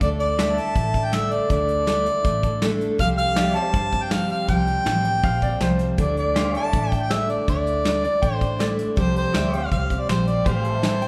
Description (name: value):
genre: honky-tonk and classic country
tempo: 161 BPM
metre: 4/4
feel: straight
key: D minor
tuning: A4 = 440 Hz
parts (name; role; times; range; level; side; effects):
- mellow harmonica; melody; 0.0-11.1 s; C5 to A5; -26 LUFS; equal; none
- picked steel-string acoustic guitar; accompaniment; 0.0-11.1 s; A2 to D5; -29 LUFS; equal; none
- vintage muted fingered electric bass; bass; 0.0-11.0 s; A1 to G2; -29 LUFS; equal; none
- soft brush drum kit; drums; 0.0-11.1 s; hi-hat, kick drum, snare drum; -28 LUFS; equal; none
- pedal steel guitar; sustained chords; 0.4-11.1 s; G4 to F5; -36 LUFS; equal; none
- bright upright piano; second line; 5.0-11.1 s; C5 to G5; -34 LUFS; equal; none
room: wet recital hall reverb, RT60 1.6 s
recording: recorded in a church or concert hall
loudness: -22 LUFS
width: mono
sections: 0.0-11.1 A section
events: none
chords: 0.0 Dsus2; 3.0 Csus4; 6.0 Dsus2; 9.0 Csus4; 10.5 Am7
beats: | 0.01 0.38 0.76 1.13 | 1.50 1.88 2.25 2.62 | 3.00 3.37 3.74 4.12 | 4.49 4.86 5.24 5.61 | 5.98 6.36 6.73 7.10 | 7.48 7.85 8.22 8.60 | 8.97 9.34 9.72 10.09 | 10.46 10.84